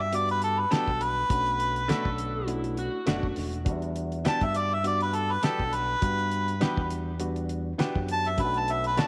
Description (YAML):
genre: straight-eighth soul blues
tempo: 102 BPM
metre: 4/4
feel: swing 55% on 16ths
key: unclear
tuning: A4 = 440 Hz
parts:
  - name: clear harmonica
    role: melody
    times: 0.0-9.1 s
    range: A4 to A5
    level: -29 LUFS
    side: equal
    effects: overdrive
  - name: bright reed electric piano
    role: accompaniment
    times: 0.0-9.1 s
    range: G3 to A4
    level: -36 LUFS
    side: equal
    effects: none
  - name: fingered electric bass with an envelope filter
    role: bass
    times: 0.0-9.0 s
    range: E1 to G2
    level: -35 LUFS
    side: equal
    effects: none
  - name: cloth-damped thuddy drum kit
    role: drums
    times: 0.1-9.1 s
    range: hi-hat, kick drum, snare drum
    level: -32 LUFS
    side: equal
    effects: none
  - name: direct-recorded clean electric guitar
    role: stabs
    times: 0.7-9.1 s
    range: B2 to G4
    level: -39 LUFS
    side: equal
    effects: none
  - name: overdriven slide guitar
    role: second line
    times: 1.9-3.4 s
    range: E4 to A4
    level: -38 LUFS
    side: equal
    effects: none
room: moderate echo chamber reverb, RT60 2.1 s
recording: none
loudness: -28 LUFS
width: mono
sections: 0.0-9.1 A section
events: none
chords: 0.0 Em7; 1.3 Bm7; 3.7 Em7; 8.4 Bm7